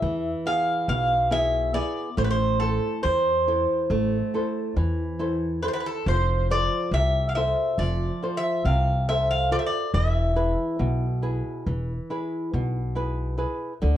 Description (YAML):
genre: greek folk, Greek bouzouki band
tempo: 139 BPM (eighths)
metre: 9/8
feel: straight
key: E phrygian dominant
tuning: A4 = 440 Hz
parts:
  - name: Greek bouzouki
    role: melody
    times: 0.0-12.9 s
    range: A4 to F5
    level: -25 LUFS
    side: equal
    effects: plate reverb
  - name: flamenco guitar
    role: accompaniment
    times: 0.0-14.0 s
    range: B2 to C5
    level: -28 LUFS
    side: right 1 dB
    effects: none
  - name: upright bass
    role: bass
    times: 0.0-14.0 s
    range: E1 to E2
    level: -25 LUFS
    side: equal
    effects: none
room: moderate studio reverb, RT60 0.6 s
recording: worn, warbling old tape, cassette tape, warbly pitch drift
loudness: -22 LUFS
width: side -11 dB against mid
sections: 0.0-13.8 A section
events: none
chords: 0.0 E; 2.2 Am; 6.1 F; 9.9 E